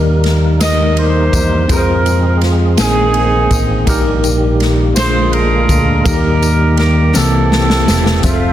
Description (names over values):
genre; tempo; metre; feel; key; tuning
slow gospel; 55 BPM (dotted quarters); 6/8; straight; Eb major; A4 = 440 Hz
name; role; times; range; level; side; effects
tine electric piano; accompaniment; 0.0-8.5 s; Bb2 to E5; -17 LUFS; left 1 dB; medium stereo tremolo
percussive tonewheel organ; sustained chords; 0.0-8.5 s; D3 to E5; -20 LUFS; right 2 dB; slow rotary speaker, chorus vibrato
fingered electric bass; bass; 0.0-8.5 s; E1 to F2; -15 LUFS; equal; none
swinging big-band drum kit; drums; 0.2-8.4 s; hi-hat, kick drum, ride cymbal, snare drum; -18 LUFS; equal; none
warm horn section; melody; 0.6-8.5 s; A3 to Eb5; -17 LUFS; right 2 dB; tape echo
tambourine; percussion; 0.6-8.5 s; none; -25 LUFS; left 8 dB; none
room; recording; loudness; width
light reverb, studio ambience; dense, heavily limited modern master; -10 LUFS; side -12 dB against mid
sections
0.0-8.2 A section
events
drum fill 7.1-8.2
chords
0.0 Eb; 1.7 Fm; 2.8 Bb9sus4; 3.9 Eb/Bb; 5.0 Bb7; 6.1 Eb; 7.1 C7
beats
0.60 | 1.69 2.78 | 3.87 4.96 | 6.05 7.15 | 8.24